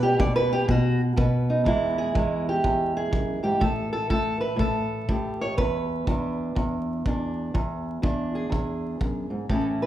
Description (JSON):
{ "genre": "acoustic country blues, solo or duo", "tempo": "122 BPM", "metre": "4/4", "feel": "swing 64% on 8ths", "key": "E mixolydian", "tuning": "A4 = 440 Hz", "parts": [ { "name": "fingerpicked steel-string acoustic guitar", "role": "melody", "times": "0.0-9.9 s", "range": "E2 to D5", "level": "-24 LUFS", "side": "equal", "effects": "none" }, { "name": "kick drum", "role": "drums", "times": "0.2-9.6 s", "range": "none", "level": "-28 LUFS", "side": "equal", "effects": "none" } ], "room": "moderate recital hall reverb, RT60 1.4 s", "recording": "recorded in a church or concert hall, vinyl crackle", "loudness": "-23 LUFS", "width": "side -12 dB against mid", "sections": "0.0-1.7 A section; 1.7-9.9 B section", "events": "steel-string acoustic guitar solo 0.0-1.7", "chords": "0.0 N.C.; 1.7 E; 3.6 A5; 5.6 E7" }